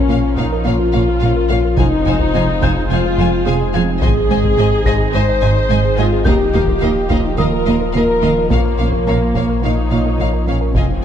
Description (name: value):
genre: cinematic, hybrid orchestral and electronic film score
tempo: 107 BPM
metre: 4/4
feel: straight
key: Bb dorian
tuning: A4 = 441 Hz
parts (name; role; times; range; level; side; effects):
- dark studio viola section; accompaniment; 0.0-11.0 s; Bb3 to C5; -23 LUFS; right 2 dB; none
- warm French horn section; sustained chords; 0.0-11.0 s; Bb3 to C5; -20 LUFS; left 5 dB; none
- warm analog pad; sustained chords; 0.0-11.0 s; F3 to Eb5; -24 LUFS; equal; chorus
- resonant blip pluck; arpeggios; 0.0-11.0 s; Eb3 to Bb4; -26 LUFS; right 3 dB; none
- punchy sub bass; bass; 0.0-11.0 s; Eb1 to Bb1; -21 LUFS; equal; none
- felt-muted upright piano; texture; 0.0-10.8 s; Bb5 to Bb6; -30 LUFS; left 2 dB; ping-pong delay
- rich symphonic violin section; melody; 0.1-10.8 s; F5 to Ab5; -28 LUFS; left 4 dB; none
- warm chamber violin section; second line; 0.1-10.8 s; Bb4 to F5; -27 LUFS; left 4 dB; none
- dark symphonic cello section; bass; 0.1-10.8 s; Eb2 to Bb2; -21 LUFS; right 3 dB; none
- warm symphonic double bass section; bass; 0.1-10.8 s; F1 to Eb2; -21 LUFS; right 4 dB; none
- solo taiko drums; drums; 0.4-11.0 s; none; -21 LUFS; left 1 dB; none
room: light reverb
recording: dark, warm production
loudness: -13 LUFS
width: side -9 dB against mid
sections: 0.0-11.0 A section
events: none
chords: 0.0 Bbm; 1.8 Fm7; 4.0 Ab; 6.3 Ebadd9; 8.5 Bbm